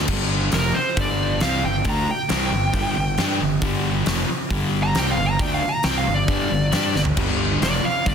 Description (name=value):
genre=hard rock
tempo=135 BPM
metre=4/4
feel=straight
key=G minor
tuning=A4 = 440 Hz
part: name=crunchy overdriven guitar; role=riff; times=0.0-8.1 s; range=F2 to G4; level=-24 LUFS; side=equal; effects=none
part: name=fuzz fingered electric bass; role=bass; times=0.0-8.1 s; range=F1 to G2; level=-26 LUFS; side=equal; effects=overdrive
part: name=huge arena drum kit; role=drums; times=0.1-8.1 s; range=crash cymbal, hi-hat, kick drum, snare drum, toms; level=-24 LUFS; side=equal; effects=none
part: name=smooth overdriven lead guitar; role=melody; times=0.5-8.1 s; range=Bb4 to Bb5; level=-24 LUFS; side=right 1 dB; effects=none
room=light reverb, small room reverb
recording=dense, heavily limited modern master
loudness=-18 LUFS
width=side -7 dB against mid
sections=0.1-8.1 A section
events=lead electric guitar solo 0.1-8.1; drum fill 7.0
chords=0.1 G5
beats=| 0.09 0.53 0.98 1.42 | 1.86 2.30 2.75 3.19 | 3.63 4.08 4.52 4.96 | 5.41 5.85 6.29 6.74 | 7.18 7.63 8.07